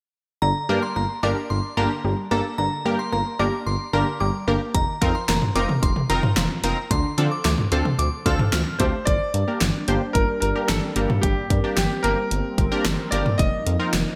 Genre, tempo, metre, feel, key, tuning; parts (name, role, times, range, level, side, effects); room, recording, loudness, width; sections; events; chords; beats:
synth-pop; 111 BPM; 4/4; straight; G minor; A4 = 440 Hz
glassy synth bell; second line; 0.4-8.9 s; Bb5 to F6; -30 LUFS; equal; chorus, digital delay
analog pluck; arpeggios; 0.4-9.0 s; D3 to D4; -32 LUFS; equal; chorus, digital delay
smooth synth bass; bass; 0.4-14.0 s; F1 to D3; -28 LUFS; equal
funky polysynth comp; accompaniment; 0.7-13.9 s; Bb3 to C5; -29 LUFS; equal; chorus
pop drum kit; drums; 4.7-14.1 s; hi-hat, kick drum, snare drum, toms; -25 LUFS; equal; gated reverb
clear concert grand piano; melody; 8.8-14.2 s; G4 to Eb5; -29 LUFS; equal; lush chorus, digital delay
sweeping resonant pad; sustained chords; 9.1-14.2 s; F3 to Eb4; -32 LUFS; equal; chorus
moderate plate reverb, RT60 1.8 s; bright 1980s-style digital production; -22 LUFS; mono
0.4-9.1 A section; 9.1-14.2 B section
0.4 Gm; 4.7 F7sus4; 6.9 Dm7; 9.1 Gm; 13.4 F7sus4
| 0.42 0.96 1.50 2.04 | 2.58 3.12 3.66 4.21 | 4.75 5.29 5.83 6.37 | 6.91 7.45 7.99 8.53 | 9.07 9.61 10.15 10.69 | 11.23 11.77 12.31 12.85 | 13.39 13.94